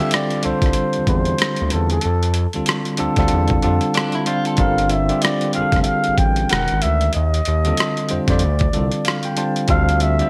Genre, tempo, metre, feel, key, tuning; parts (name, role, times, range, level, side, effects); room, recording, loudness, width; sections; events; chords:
R&B, neo-soul; 94 BPM; 4/4; swing 61% on 16ths; D minor; A4 = 442 Hz
trumpet with bucket mute; melody; 0.0-10.3 s; A4 to G5; -25 LUFS; equal
bell-like tine electric piano; accompaniment; 0.0-10.3 s; D3 to A5; -23 LUFS; equal
boom bap sampler-style drum kit; drums; 0.1-10.3 s; hi-hat, kick drum, rim click; -24 LUFS; equal; overdrive, gated reverb
smooth gliding synth bass; bass; 0.5-10.2 s; E1 to F2; -22 LUFS; equal
clean electric guitar; second line; 4.0-4.8 s; D4 to A4; -29 LUFS; equal; tremolo
moderate plate reverb, RT60 1.4 s; bright 1980s-style digital production; -18 LUFS; mono
0.0-9.7 A section
tine electric piano fill 8.7-9.7
0.0 Dm11; 2.0 Fadd9; 4.6 Gm9; 6.5 Emaj7; 7.1 Ebmaj7; 8.4 Dm7; 9.7 Dm11